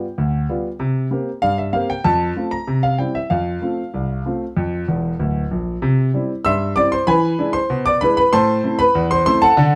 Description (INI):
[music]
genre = ragtime piano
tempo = 96 BPM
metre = 2/4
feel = straight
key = F major, C major from 5.8 s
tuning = A4 = 441 Hz
[part]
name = clear concert grand piano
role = solo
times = 0.0-9.8 s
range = D1 to E6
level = -18 LUFS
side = equal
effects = none
[sound]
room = moderate studio reverb, RT60 0.6 s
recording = band playing live in one room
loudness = -19 LUFS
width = mono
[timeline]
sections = 0.0-5.8 A section; 5.8-9.8 B section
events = grand piano fill 4.9-5.8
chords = 0.0 G7; 0.8 C5; 2.0 F; 2.7 C; 3.3 F; 5.8 C; 7.1 E7; 8.3 Am